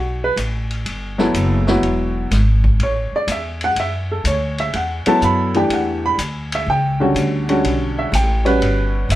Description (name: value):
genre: modal jazz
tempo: 124 BPM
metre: 4/4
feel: swing 68% on 8ths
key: E dorian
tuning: A4 = 442 Hz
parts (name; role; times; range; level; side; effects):
- clear upright piano; accompaniment; 0.0-9.2 s; D3 to B5; -18 LUFS; equal; none
- upright bass; bass; 0.0-9.2 s; E1 to F#2; -20 LUFS; equal; none
- vintage drum kit; drums; 0.4-9.2 s; hi-hat, kick drum, ride cymbal, snare drum; -27 LUFS; left 1 dB; none
room: light reverb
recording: band playing live in one room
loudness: -16 LUFS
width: side -14 dB against mid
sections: 0.0-9.2 A section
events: none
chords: 0.0 Em; 1.8 F#m7/E; 5.7 Em7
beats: 0.37 0.86 1.34 | 1.83 2.31 2.80 3.29 | 3.77 4.26 4.74 5.23 | 5.71 6.19 6.68 7.16 | 7.65 8.13 8.61 9.10